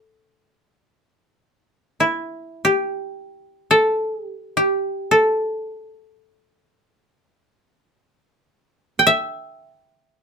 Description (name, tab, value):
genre	japanese traditional, Japanese chamber music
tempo	free time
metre	none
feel	none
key	unclear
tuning	A4 = 440 Hz
part	koto	solo	0.0-10.2 s	D4 to G5	-17 LUFS	equal	none
room	moderate small room ambience, RT60 0.5 s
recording	minimal, uncompressed stereo recording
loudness	-18 LUFS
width	side -6 dB against mid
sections	0.0-10.2 A section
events	none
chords	none